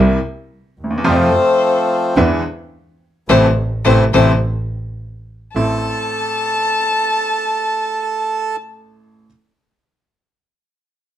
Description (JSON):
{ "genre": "tango", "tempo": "107 BPM", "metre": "4/4", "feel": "rubato", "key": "A minor", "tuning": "A4 = 440 Hz", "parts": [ { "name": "bright upright piano", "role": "accompaniment", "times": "0.0-9.3 s", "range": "A1 to F4", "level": "-17 LUFS", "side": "right 1 dB", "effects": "none" }, { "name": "clear double bass", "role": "bass", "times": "0.0-5.8 s", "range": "A1 to F2", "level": "-17 LUFS", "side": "right 1 dB", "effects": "none" }, { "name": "bandoneon", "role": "melody", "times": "1.1-8.6 s", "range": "E3 to A4", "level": "-19 LUFS", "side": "right 1 dB", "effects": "plate reverb" }, { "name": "warm violin", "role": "second line", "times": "1.1-8.6 s", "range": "C5 to A5", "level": "-19 LUFS", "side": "left 5 dB", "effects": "none" } ], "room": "light reverb", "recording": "close, detailed microphones", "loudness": "-14 LUFS", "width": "side -11 dB against mid", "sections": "0.0-5.6 A section; 5.6-7.8 B section", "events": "band accent 3.3-5.6", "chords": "0.0 C7; 1.1 F; 2.2 E7; 3.3 Am; 5.0 N.C.; 5.6 Am" }